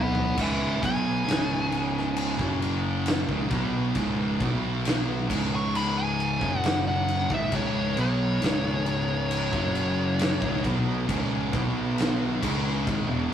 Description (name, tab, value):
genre	stoner and doom metal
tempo	67 BPM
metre	4/4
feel	straight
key	unclear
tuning	A4 = 440 Hz
part	fuzz lead guitar	melody	0.0-10.6 s	C#5 to C#6	-30 LUFS	left 1 dB	distortion
part	distorted electric guitar	riff	0.0-13.3 s	C#2 to C#4	-31 LUFS	equal	distortion
part	thick fuzz guitar	riff	0.0-13.3 s	C#2 to C#4	-34 LUFS	left 6 dB	distortion
part	thick fuzz guitar	riff	0.0-13.3 s	C#2 to C#4	-30 LUFS	right 4 dB	distortion
part	growling fingered electric bass	bass	0.0-13.3 s	C#1 to C#2	-32 LUFS	equal	overdrive
part	big rock drum kit	drums	0.1-13.1 s	crash cymbal, kick drum, snare drum, toms	-29 LUFS	equal	none
room	moderate stone room reverb, RT60 1.4 s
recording	rough rehearsal-room recording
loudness	-23 LUFS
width	side -9 dB against mid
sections	0.0-13.3 A section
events	drum fill 0.0-0.4; lead electric guitar solo 0.0-13.3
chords	0.0 C#5; 2.4 F#5; 3.3 C#5; 4.4 B5; 5.3 C#5; 6.4 F#5; 7.3 C#5; 9.5 F#5; 10.4 C#5; 11.5 B5; 12.4 C#m